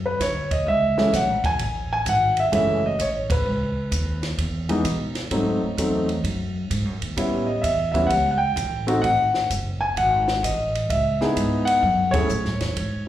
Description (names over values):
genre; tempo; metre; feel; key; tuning
jazz piano trio; 129 BPM; 4/4; swing 66% on 8ths; unclear; A4 = 440 Hz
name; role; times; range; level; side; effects
upright bass; bass; 0.0-13.1 s; F#1 to B2; -26 LUFS; equal; none
warm concert grand piano; melody; 0.1-13.0 s; E3 to G#5; -21 LUFS; left 1 dB; slapback echo
compact cocktail drum kit; drums; 0.2-12.9 s; hi-hat, kick drum, ride cymbal, snare drum; -30 LUFS; right 1 dB; none
room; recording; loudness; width
light reverb, studio reverb; live gig heard through the venue's PA, club reverb; -20 LUFS; side -12 dB against mid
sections
0.0-13.1 A section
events
band accent 3.2, 12.1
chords
0.0 F#m9; 3.5 C#m9; 5.3 G#7b9; 7.2 A7; 9.0 G#5; 10.9 C#m9; 11.8 F#m7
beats
0.21 0.67 1.13 | 1.60 2.06 2.53 2.99 | 3.46 3.92 4.39 4.85 | 5.32 5.78 6.25 6.71 | 7.18 7.64 8.11 8.57 | 9.04 9.51 9.97 10.44 | 10.90 11.37 11.83 12.30 | 12.76